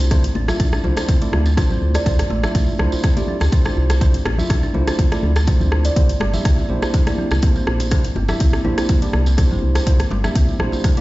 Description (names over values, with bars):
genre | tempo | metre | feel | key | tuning
afro house | 123 BPM | 4/4 | swing 54% on 16ths | D minor | A4 = 440 Hz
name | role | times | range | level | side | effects
tine electric piano | stabs | 0.0-11.0 s | A3 to E5 | -26 LUFS | right 2 dB | sidechain pumping, tape echo
woody FM bass | bass | 0.0-10.7 s | G1 to D2 | -19 LUFS | equal | sidechain pumping
house drum kit | drums | 0.0-11.0 s | hi-hat, rim click | -26 LUFS | equal | overdrive
tambourine | percussion | 0.0-11.0 s | none | -35 LUFS | right 2 dB | none
kalimba | arpeggios | 0.1-11.0 s | G3 to D5 | -26 LUFS | equal | sidechain pumping, tape echo
electronic kick drum | drums | 0.1-10.9 s | none | -16 LUFS | equal | overdrive
djembe | percussion | 0.1-10.8 s | none | -29 LUFS | equal | none
congas | percussion | 0.4-11.0 s | none | -29 LUFS | left 2 dB | none
room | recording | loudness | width
small room ambience | played on a big sound system in a bare room, stone room reverb, nothing above 7.6 kHz | -15 LUFS | side -18 dB against mid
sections
0.0-11.0 A section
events
none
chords
0.0 Dm7; 6.0 C7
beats
| 0.11 0.60 1.09 1.57 | 2.06 2.55 3.04 3.53 | 4.01 4.50 4.99 5.48 | 5.96 6.45 6.94 7.43 | 7.92 8.40 8.89 9.38 | 9.87 10.36 10.84